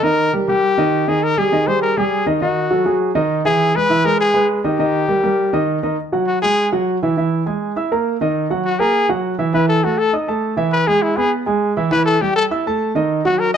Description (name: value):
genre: jazz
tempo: 202 BPM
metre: 4/4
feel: straight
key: unclear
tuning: A4 = 438 Hz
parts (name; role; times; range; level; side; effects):
- clear trumpet; melody; 0.0-13.6 s; E4 to B#4; -17 LUFS; left 3 dB; plate reverb
- warm concert grand piano; accompaniment; 0.0-13.6 s; D#3 to E6; -17 LUFS; right 2 dB; none
room: moderate club reverb, RT60 0.9 s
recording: dark, warm production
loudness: -15 LUFS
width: side -8 dB against mid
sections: 0.0-6.0 A section; 6.0-13.6 B section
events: trumpet solo 6.0-13.6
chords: 0.0 D#; 1.2 G#5; 2.4 D#dim; 3.0 G#5; 3.6 Emaj7; 4.8 D#; 6.0 Eadd9; 7.2 E; 7.8 D#5; 8.4 D#madd11; 9.5 Esus24; 10.1 Esus4; 10.7 E; 11.9 A5